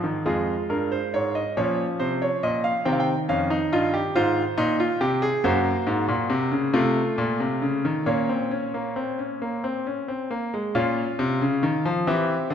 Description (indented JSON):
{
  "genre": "classical, baroque-style 4-part fugue for grand piano",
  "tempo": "46 BPM (dotted quarters)",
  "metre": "6/8",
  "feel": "straight",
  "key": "Db major, Bb minor from 5.4 s",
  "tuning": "A4 = 440 Hz",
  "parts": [
    { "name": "clear concert grand piano", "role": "solo", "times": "0.0-12.5 s", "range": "F2 to G5", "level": "-22 LUFS", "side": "equal", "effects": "none" }
  ],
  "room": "moderate concert hall reverb, RT60 2.3 s",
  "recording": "minimal, uncompressed stereo recording",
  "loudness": "-22 LUFS",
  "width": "side -8 dB against mid",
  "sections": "0.3-10.7 A section; 10.7-12.5 B section",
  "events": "none",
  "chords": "0.3 Db/F; 1.6 Bbmadd9; 2.9 Cm; 4.1 Fm7/Ab; 5.4 Ab9/Gb; 6.7 F7; 8.1 Bbm"
}